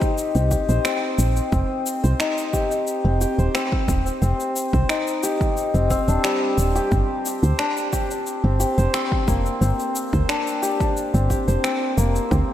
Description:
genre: organic downtempo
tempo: 89 BPM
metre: 4/4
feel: straight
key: unclear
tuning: A4 = 440 Hz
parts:
  - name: santur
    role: arpeggios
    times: 0.0-12.5 s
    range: G3 to C5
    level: -22 LUFS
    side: left 2 dB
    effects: tape echo, shimmer reverb
  - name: electronic kick drum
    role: drums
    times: 0.0-12.5 s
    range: none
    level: -24 LUFS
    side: equal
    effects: overdrive
  - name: electronic shaker and finger snaps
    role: drums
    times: 0.0-12.5 s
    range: none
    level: -29 LUFS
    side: equal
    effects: overdrive
  - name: woody FM bass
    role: bass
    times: 0.4-12.4 s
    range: Eb1 to D2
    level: -19 LUFS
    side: equal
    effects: none
room: moderate lush hall reverb, RT60 2.6 s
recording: dreamy mix soaked in reverb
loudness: -19 LUFS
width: side -12 dB against mid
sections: 0.0-12.5 A section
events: none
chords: 0.0 Cm7; 1.5 N.C.; 6.9 Gm

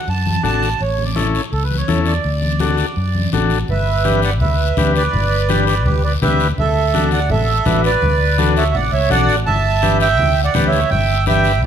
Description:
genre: latin, cumbia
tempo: 166 BPM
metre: 4/4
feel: straight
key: D major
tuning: A4 = 440 Hz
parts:
  - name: accordion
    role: melody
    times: 0.0-11.6 s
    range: G4 to A5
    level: -18 LUFS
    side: right 6 dB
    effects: none
  - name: fingered electric bass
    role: bass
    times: 0.1-11.7 s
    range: G1 to F#2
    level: -18 LUFS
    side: equal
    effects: none
  - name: congas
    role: percussion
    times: 0.1-11.7 s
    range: none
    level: -22 LUFS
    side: left 2 dB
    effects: none
  - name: guiro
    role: percussion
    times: 0.1-11.7 s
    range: none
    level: -29 LUFS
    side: left 8 dB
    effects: none
  - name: overdriven combo organ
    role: accompaniment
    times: 0.4-11.5 s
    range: C#4 to B4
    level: -22 LUFS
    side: left 6 dB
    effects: none
room: light reverb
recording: close, detailed microphones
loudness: -14 LUFS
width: side -8 dB against mid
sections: 0.0-3.7 A section; 3.7-11.7 B section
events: none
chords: 0.0 D; 0.8 A; 2.2 D; 3.7 G6; 6.6 D; 9.5 G6

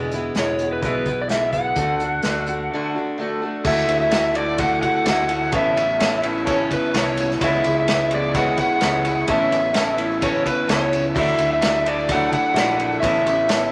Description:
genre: folk rock and heartland rock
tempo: 128 BPM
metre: 4/4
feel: straight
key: unclear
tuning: A4 = 441 Hz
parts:
  - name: picked old ladder-braced acoustic guitar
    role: accompaniment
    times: 0.0-13.7 s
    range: E2 to F#4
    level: -28 LUFS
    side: equal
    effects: none
  - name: electric guitar through a small old amp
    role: riff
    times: 0.0-13.7 s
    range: E2 to F#4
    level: -28 LUFS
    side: equal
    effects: none
  - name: fingered electric bass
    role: bass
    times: 0.0-13.7 s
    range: E1 to D2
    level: -32 LUFS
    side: equal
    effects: none
  - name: unplugged drum kit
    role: drums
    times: 0.1-13.6 s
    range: crash cymbal, hi-hat, kick drum, ride cymbal, snare drum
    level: -28 LUFS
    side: equal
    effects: none
  - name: overdriven slide guitar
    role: melody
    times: 0.4-13.7 s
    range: B4 to F#5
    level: -23 LUFS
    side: equal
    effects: none
  - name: bright upright piano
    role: accompaniment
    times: 3.7-13.7 s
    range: E4 to F#5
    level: -33 LUFS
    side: equal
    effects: none
  - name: rich studio string section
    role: sustained chords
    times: 3.7-13.7 s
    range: A4 to D6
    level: -39 LUFS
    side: equal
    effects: none
  - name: tambourine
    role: percussion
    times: 3.9-13.7 s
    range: none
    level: -44 LUFS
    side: equal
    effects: none
room: moderate studio reverb, RT60 0.7 s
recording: lossy compression artefacts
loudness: -20 LUFS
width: mono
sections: 0.0-3.7 A section; 3.7-13.7 B section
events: break 2.7-3.7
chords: 0.0 E; 1.8 D; 3.7 Dadd9; 5.5 Aadd9; 7.4 C#m7; 9.3 Aadd9; 11.2 Dadd9; 13.0 Aadd9

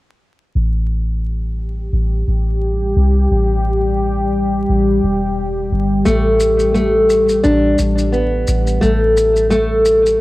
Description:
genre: trip hop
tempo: 87 BPM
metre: 4/4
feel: swing 58% on 16ths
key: unclear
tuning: A4 = 441 Hz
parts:
  - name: deep dark ambient pad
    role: sustained chords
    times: 2.1-10.2 s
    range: G3 to G4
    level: -20 LUFS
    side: left 1 dB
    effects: chorus, built-in reverb, cassette tape
  - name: soft 808-style bass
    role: bass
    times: 0.6-10.2 s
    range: E1 to C2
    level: -17 LUFS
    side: equal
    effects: none
  - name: nylon-string guitar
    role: arpeggios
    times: 6.1-10.2 s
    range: A3 to D4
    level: -13 LUFS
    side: equal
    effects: cassette tape, analog delay
  - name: maracas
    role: percussion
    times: 6.1-10.2 s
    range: none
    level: -30 LUFS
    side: left 2 dB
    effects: none
room: studio reverb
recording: home recording on cassette, vinyl crackle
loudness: -13 LUFS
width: side -18 dB against mid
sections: 0.5-10.2 A section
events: none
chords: 0.5 A7(no3); 6.1 G/A

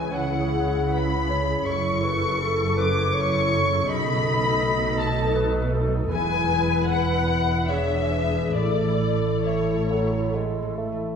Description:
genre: classical, slow romantic movement for symphony orchestra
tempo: 66-83 BPM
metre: 3/4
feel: rubato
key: A major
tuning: A4 = 444 Hz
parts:
  - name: muted chamber violin section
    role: melody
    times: 0.0-10.3 s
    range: C#5 to D6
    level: -28 LUFS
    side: left 4 dB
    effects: none
  - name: mellow clarinet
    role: second line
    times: 0.0-10.8 s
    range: G#4 to D#5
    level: -30 LUFS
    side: equal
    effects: none
  - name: muted chamber violin section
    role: second line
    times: 0.0-10.3 s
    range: C#5 to D6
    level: -31 LUFS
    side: left 3 dB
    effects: none
  - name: muted chamber viola section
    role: accompaniment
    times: 0.0-11.0 s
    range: D4 to B4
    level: -29 LUFS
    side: equal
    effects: none
  - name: concert harp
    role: arpeggios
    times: 0.0-11.2 s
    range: F#2 to E5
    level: -28 LUFS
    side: left 4 dB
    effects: none
  - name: muted chamber cello section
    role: bass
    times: 0.0-11.0 s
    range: E2 to C#3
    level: -32 LUFS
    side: right 4 dB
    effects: none
  - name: muted chamber double bass section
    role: bass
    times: 0.0-11.0 s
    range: E1 to C#2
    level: -28 LUFS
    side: right 3 dB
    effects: none
  - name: mellow bassoon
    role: accompaniment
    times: 9.5-11.2 s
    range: F#3 to A3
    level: -30 LUFS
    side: right 3 dB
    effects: none
room: wet scoring stage reverb, RT60 1.5 s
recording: minimal, uncompressed stereo recording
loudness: -21 LUFS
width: side -7 dB against mid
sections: 0.0-11.2 A section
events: none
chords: 0.0 C#m; 1.7 F#m7; 3.9 B7; 6.1 E; 7.7 E7; 8.6 A

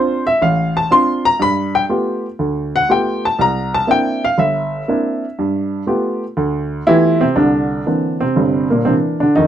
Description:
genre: solo jazz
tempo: 121 BPM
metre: 4/4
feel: swing 69% on 8ths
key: C mixolydian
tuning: A4 = 440 Hz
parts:
  - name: warm upright piano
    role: solo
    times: 0.0-9.5 s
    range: G1 to C6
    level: -14 LUFS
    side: equal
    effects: none
room: light reverb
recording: none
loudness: -14 LUFS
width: side -10 dB against mid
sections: 0.0-7.4 A section; 7.4-9.5 B section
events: upright piano solo 0.0-7.4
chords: 0.0 Dm7; 1.4 G9; 3.4 C9; 5.4 G9; 7.4 C9

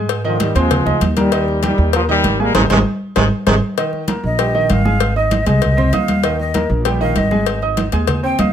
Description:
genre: latin, salsa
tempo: 195 BPM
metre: 4/4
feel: straight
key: Eb major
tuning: A4 = 443 Hz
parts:
  - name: clear concert grand piano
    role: accompaniment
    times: 0.0-8.5 s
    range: Eb3 to Eb6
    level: -20 LUFS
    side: right 1 dB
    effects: none
  - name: upright bass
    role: bass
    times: 0.0-8.5 s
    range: Ab1 to Ab2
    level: -18 LUFS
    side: right 1 dB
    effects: none
  - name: congas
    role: percussion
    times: 0.1-8.5 s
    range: none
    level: -20 LUFS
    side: equal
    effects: none
  - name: cowbell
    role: percussion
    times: 0.1-8.5 s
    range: none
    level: -23 LUFS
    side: left 9 dB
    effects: none
  - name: bright trombone section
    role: melody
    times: 0.3-3.5 s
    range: Bb2 to Bb3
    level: -18 LUFS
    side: equal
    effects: none
  - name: breathy baritone saxophone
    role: second line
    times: 2.6-3.5 s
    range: Eb3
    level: -23 LUFS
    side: right 5 dB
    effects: none
  - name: mellow jazz flute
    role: melody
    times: 4.3-8.5 s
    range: Eb5 to G5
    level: -20 LUFS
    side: left 1 dB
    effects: none
room: light reverb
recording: close, detailed microphones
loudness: -13 LUFS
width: side -9 dB against mid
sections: 0.0-3.8 A section; 3.8-8.5 B section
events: band accent 2.5-3.8; flute solo 3.8-8.5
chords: 0.1 Ab; 1.3 Eb; 2.5 Ab; 3.8 Ebadd9; 5.0 Ab; 6.2 Eb; 7.5 Ab

